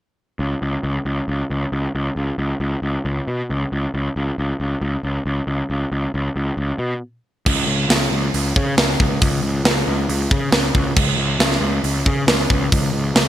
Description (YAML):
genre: heavy metal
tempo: 136 BPM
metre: 4/4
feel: straight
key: unclear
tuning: A4 = 439 Hz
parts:
  - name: fuzz picked electric bass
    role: bass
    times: 0.4-13.3 s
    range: C#2 to C#3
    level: -20 LUFS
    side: equal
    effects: overdrive
  - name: tight metal drum kit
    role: drums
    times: 7.5-13.3 s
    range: crash cymbal, hi-hat, kick drum, snare drum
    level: -17 LUFS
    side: right 1 dB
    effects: gated reverb
room: light reverb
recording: bright 1980s-style digital production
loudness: -18 LUFS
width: side -12 dB against mid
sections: 0.4-7.5 A section; 7.5-13.3 B section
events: break 7.0-7.5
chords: none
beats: | 0.40 0.84 1.28 1.72 | 2.17 2.61 3.05 3.49 | 3.93 4.37 4.82 5.26 | 5.70 6.14 6.58 7.02 | 7.46 7.90 8.34 8.78 | 9.21 9.65 10.09 10.53 | 10.97 11.40 11.84 12.28 | 12.72 13.15